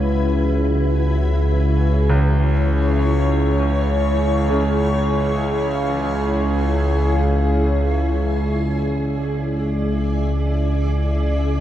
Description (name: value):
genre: dark ambient drone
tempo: free time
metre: none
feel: none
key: unclear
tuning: A4 = 445 Hz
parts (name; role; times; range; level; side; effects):
- granular cloud pad; sustained chords; 0.0-11.6 s; E4 to D5; -24 LUFS; left 1 dB; built-in reverb
- analog drone; drone; 0.0-11.6 s; C#2 to C#3; -18 LUFS; equal; chorus
- bright grand piano; arpeggios; 2.1-11.6 s; C#2 to C#3; -28 LUFS; right 1 dB; diffuse ambient delay
room: wet plate reverb, RT60 2.9 s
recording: dreamy mix soaked in reverb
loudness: -17 LUFS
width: side -12 dB against mid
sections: 0.0-11.6 A section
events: fade-out on ambient pad 0.0-11.6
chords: 0.0 E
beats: free time